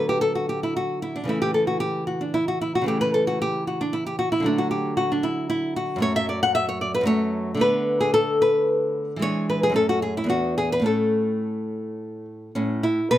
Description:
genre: classical, baroque-style dance for nylon-string guitar.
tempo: 112 BPM.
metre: 3/4.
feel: rubato.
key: D major, A major from 6.0 s.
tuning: A4 = 439 Hz.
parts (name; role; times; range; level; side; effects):
nylon-string guitar; solo; 0.0-13.2 s; E2 to F#5; -21 LUFS; equal; none.
room: moderate studio reverb, RT60 0.7 s.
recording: none.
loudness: -21 LUFS.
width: side -13 dB against mid.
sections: 0.0-12.6 A section.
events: none.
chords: 0.0 D; 6.0 F#m; 7.6 Bm7/D; 9.2 E7; 9.8 F#m; 10.3 E5; 10.9 A; 12.6 Aadd9.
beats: 0.22 0.77 | 1.30 1.83 2.37 | 2.90 3.42 3.94 | 4.46 4.99 5.51 | 6.04 6.56 7.09 | 7.62 8.15 8.69 | 9.23 9.77 10.31 | 10.87 11.44 12.01 | 12.57 13.12.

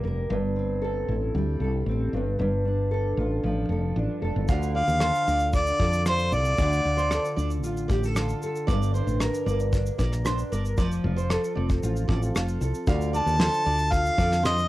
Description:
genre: acoustic pop.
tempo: 115 BPM.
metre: 4/4.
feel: straight.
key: unclear.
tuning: A4 = 441 Hz.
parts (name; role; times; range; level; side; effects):
nylon-string guitar; accompaniment; 0.0-14.7 s; G2 to Bb4; -29 LUFS; equal; double-tracked left and right, cassette tape.
woody fretless electric bass; bass; 0.0-14.7 s; F1 to F2; -26 LUFS; equal; none.
fingerpicked steel-string acoustic guitar; arpeggios; 4.5-14.6 s; A4 to F5; -35 LUFS; right 6 dB; cassette tape.
soft brush drum kit; drums; 4.5-14.7 s; kick drum, rim click, shaker, snare drum; -27 LUFS; equal; none.
warm harmonica; melody; 4.8-7.4, 13.2-14.7 s; C5 to A5; -24 LUFS; equal; cassette tape.
room: light reverb.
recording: home recording on cassette.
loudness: -23 LUFS.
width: side -16 dB against mid.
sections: 0.0-4.5 A section; 4.5-14.7 B section.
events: none.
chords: 0.3 Am/G; 2.1 Dm/G; 4.5 Dm; 8.7 Gm; 10.8 F; 12.9 Dm.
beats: | 0.30 0.82 1.35 1.87 | 2.40 2.92 3.44 3.97 | 4.49 5.02 5.54 6.06 | 6.59 7.11 7.64 8.16 | 8.68 9.21 9.73 10.25 | 10.78 11.30 11.82 12.35 | 12.87 13.39 13.91 14.44.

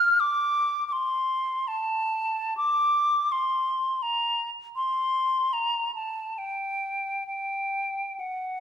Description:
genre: classical, free, expressive piece for unaccompanied flute.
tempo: 62-87 BPM.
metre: 3/4.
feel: rubato.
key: G minor.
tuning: A4 = 441 Hz.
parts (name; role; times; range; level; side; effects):
hollow concert flute; solo; 0.0-8.6 s; F#5 to F6; -24 LUFS; equal; none.
room: moderate recital hall reverb, RT60 1.3 s.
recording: minimal, uncompressed stereo recording.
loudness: -24 LUFS.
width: side -8 dB against mid.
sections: 0.0-8.6 A section.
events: none.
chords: none.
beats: | 0.23 0.95 1.69 | 2.58 3.34 4.05 | 4.77 5.54 6.38 | 7.27 8.20.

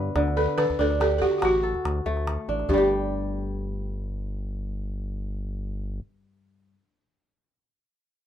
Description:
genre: west african traditional, West African string and xylophone music.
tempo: 94 BPM (dotted quarters).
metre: 12/8.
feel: straight.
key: G major.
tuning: A4 = 440 Hz.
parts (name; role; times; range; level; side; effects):
kora; arpeggios; 0.0-6.8 s; G2 to D5; -26 LUFS; left 1 dB; none.
round analog bass; bass; 0.0-6.0 s; G1 to D3; -30 LUFS; equal; none.
calabash; percussion; 0.2-2.9 s; none; -32 LUFS; equal; none.
balafon; melody; 0.4-6.7 s; F#4 to B4; -25 LUFS; right 1 dB; none.
room: light reverb.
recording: minimal, uncompressed stereo recording.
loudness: -24 LUFS.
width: side -10 dB against mid.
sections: 0.0-2.7 A section; 2.7-5.2 B section.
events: none.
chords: 0.2 D; 2.7 G5.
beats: | 0.16 0.79 1.43 2.06 | 2.70 3.33 3.97 4.60.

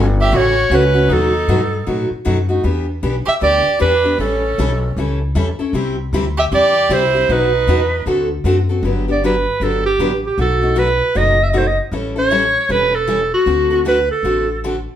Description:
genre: acoustic string swing (jazz manouche).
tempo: 155 BPM.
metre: 4/4.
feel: swing 62% on 8ths.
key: E minor, G major from 8.8 s.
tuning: A4 = 440 Hz.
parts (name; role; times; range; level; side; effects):
picked steel-string acoustic guitar; accompaniment; 0.0-14.8 s; B2 to A4; -20 LUFS; left 1 dB; none.
upright bass; bass; 0.0-14.9 s; E1 to A2; -19 LUFS; left 1 dB; none.
bright clarinet; melody; 0.2-14.6 s; F#4 to E5; -16 LUFS; right 2 dB; none.
warm violin; second line; 0.2-8.1 s; C#4 to G4; -23 LUFS; right 2 dB; none.
room: wet studio reverb, RT60 0.8 s.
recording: band playing live in one room.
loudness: -14 LUFS.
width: side -10 dB against mid.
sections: 0.0-8.8 A section; 8.8-15.0 B section.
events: none.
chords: 0.0 F#m7; 1.1 B7; 2.6 Em7; 4.2 A7; 5.7 C; 7.3 B; 8.1 D7; 8.8 Gmaj7; 10.4 B7; 11.9 A7; 13.5 D7.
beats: 0.32 0.71 | 1.10 1.49 1.87 2.26 | 2.65 3.03 3.42 3.81 | 4.20 4.58 4.97 5.36 | 5.74 6.13 6.51 6.90 | 7.29 7.67 8.06 8.45 | 8.83 9.22 9.61 9.99 | 10.38 10.77 11.15 11.54 | 11.93 12.31 12.70 13.09 | 13.47 13.86 14.25 14.63.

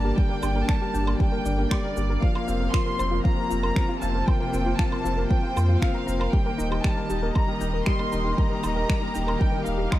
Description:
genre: piano and strings electronica.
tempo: 117 BPM.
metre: 4/4.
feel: straight.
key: unclear.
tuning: A4 = 440 Hz.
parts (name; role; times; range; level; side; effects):
warm studio violin section; melody; 0.0-10.0 s; D5 to C6; -31 LUFS; right 1 dB; tape echo.
rich symphonic string section; sustained chords; 0.0-10.0 s; C3 to Eb5; -33 LUFS; right 1 dB; sidechain pumping.
soft round pluck; arpeggios; 0.0-10.0 s; F4 to Bb5; -35 LUFS; left 3 dB; chorus, sidechain pumping, tape echo.
felt-muted upright piano; riff; 0.0-10.0 s; F3 to Bb4; -29 LUFS; left 2 dB; none.
warm sub bass; bass; 0.0-9.9 s; Eb1 to F2; -26 LUFS; equal; sidechain pumping.
electronic kick drum; drums; 0.2-10.0 s; none; -23 LUFS; equal; studio reverb.
electronic shaker, woodblock and finger snaps; drums; 0.4-10.0 s; none; -34 LUFS; right 2 dB; studio reverb.
room: light reverb, studio reverb.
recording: dark, warm production.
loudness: -22 LUFS.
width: side -14 dB against mid.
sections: 0.0-10.0 A section.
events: none.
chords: 0.0 Gm; 2.2 Fsus4; 6.3 Eb.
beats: | 0.17 0.69 1.20 1.71 | 2.23 2.74 3.25 3.76 | 4.28 4.79 5.30 5.82 | 6.33 6.84 7.35 7.87 | 8.38 8.89 9.40 9.92.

